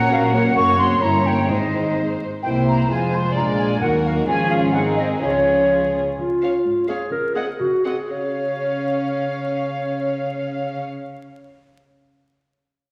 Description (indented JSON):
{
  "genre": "quick classical-period movement for symphony orchestra",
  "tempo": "116-134 BPM",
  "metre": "2/4",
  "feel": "rubato",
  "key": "Db major",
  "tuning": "A4 = 440 Hz",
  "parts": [
    { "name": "warm chamber violin section", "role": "melody", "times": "0.0-10.8 s", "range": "Ab4 to Gb5", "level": "-30 LUFS", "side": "equal", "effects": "none" },
    { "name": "small flute group", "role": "second line", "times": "0.0-5.9 s", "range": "Db5 to Db6", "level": "-23 LUFS", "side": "equal", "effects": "none" },
    { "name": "warm studio violin section", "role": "second line", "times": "0.0-10.8 s", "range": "Eb4 to Eb5", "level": "-32 LUFS", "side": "equal", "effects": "none" },
    { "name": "warm chamber viola section", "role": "accompaniment", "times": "0.0-10.8 s", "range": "Ab3 to Db4", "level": "-29 LUFS", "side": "equal", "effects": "none" },
    { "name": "warm French horn section", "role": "sustained chords", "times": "0.0-5.9 s", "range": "Eb3 to F4", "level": "-29 LUFS", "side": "equal", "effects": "none" },
    { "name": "warm chamber cello section", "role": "bass", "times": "0.0-10.8 s", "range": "Eb2 to Db3", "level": "-30 LUFS", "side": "equal", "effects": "none" },
    { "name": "warm chamber double bass section", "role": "bass", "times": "0.0-6.0 s", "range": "F1 to Eb2", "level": "-29 LUFS", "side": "equal", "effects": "none" },
    { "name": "timpani", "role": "percussion", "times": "1.5-2.2 s", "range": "Ab2", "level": "-37 LUFS", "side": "equal", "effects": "none" },
    { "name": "mellow clarinet", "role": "second line", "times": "6.2-10.8 s", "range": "F4 to Db5", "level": "-25 LUFS", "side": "equal", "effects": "none" }
  ],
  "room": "wet scoring stage reverb, RT60 1.9 s",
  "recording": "vinyl crackle",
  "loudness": "-20 LUFS",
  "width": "mono",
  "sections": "0.0-6.2 A section; 6.2-8.1 B section; 8.1-10.1 C section",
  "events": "slowing down 5.7-8.1",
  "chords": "0.0 Gb/Bb; 0.6 Gb; 1.0 Gdim7; 1.5 Ab; 2.4 C7; 2.9 Fm; 3.4 Bb7; 3.8 Ebm; 4.3 Db/Ab; 4.7 Ab; 5.2 Db; 7.1 Gbadd9/Db; 8.1 Db"
}